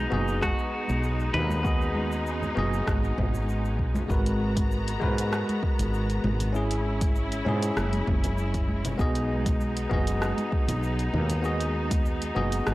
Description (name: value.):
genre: sunset chillout.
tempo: 98 BPM.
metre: 4/4.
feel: swing 53% on 16ths.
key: B major.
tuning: A4 = 440 Hz.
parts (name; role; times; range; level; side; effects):
clean electric guitar; melody; 0.0-3.4 s; D#4 to B4; -32 LUFS; left 1 dB; warbly pitch drift, analog delay.
bell-like tine electric piano; accompaniment; 0.0-12.7 s; G#3 to D#5; -31 LUFS; equal; auto-pan, tape echo.
bright symphonic string section; sustained chords; 0.0-12.7 s; G#3 to A#5; -34 LUFS; left 1 dB; none.
woody fretless electric bass; bass; 0.0-12.7 s; F#1 to G#2; -28 LUFS; equal; none.
deep house drum kit; drums; 0.1-12.7 s; cabasa, congas, hi-hat, rim click; -34 LUFS; equal; none.
electronic kick drum; drums; 0.4-12.0 s; none; -28 LUFS; equal; none.
congas; percussion; 0.4-12.0 s; none; -37 LUFS; right 1 dB; none.
room: light reverb, digital ambience.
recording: dry, gritty hardware recording.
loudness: -24 LUFS.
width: side -17 dB against mid.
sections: 0.0-4.1 A section; 4.1-12.7 A section.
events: none.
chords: 0.0 B6; 4.1 G#m9; 6.5 E69/G#; 9.0 B6.